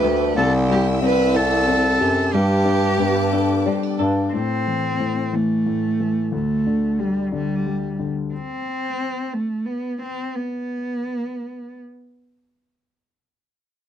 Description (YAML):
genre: six-eight pop ballad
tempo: 60 BPM (dotted quarters)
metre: 6/8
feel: straight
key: unclear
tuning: A4 = 440 Hz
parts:
  - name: warm cello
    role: melody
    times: 0.0-11.8 s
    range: G3 to B4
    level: -23 LUFS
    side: right 1 dB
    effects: none
  - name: warm grand piano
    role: accompaniment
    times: 0.0-8.3 s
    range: D2 to A5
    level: -22 LUFS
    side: left 5 dB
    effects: none
  - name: warm studio string section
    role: sustained chords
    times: 0.0-4.3 s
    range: C4 to E6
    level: -29 LUFS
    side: equal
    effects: none
  - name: direct-recorded clean electric guitar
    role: arpeggios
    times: 0.0-4.9 s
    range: G3 to A4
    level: -29 LUFS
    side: right 18 dB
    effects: wide subtle chorus
  - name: clear bass clarinet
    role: bass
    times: 0.0-4.3 s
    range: C2 to G2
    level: -21 LUFS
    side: right 1 dB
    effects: none
room: little or no reverb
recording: dry, close 1970s-style studio recording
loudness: -19 LUFS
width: side -10 dB against mid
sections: 0.0-4.3 A section; 4.3-12.5 B section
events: grand piano fill 3.3-4.3; slowing down 8.3-12.5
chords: 0.4 C; 2.3 Gadd9; 4.3 Am; 6.3 Dsus4; 8.3 N.C.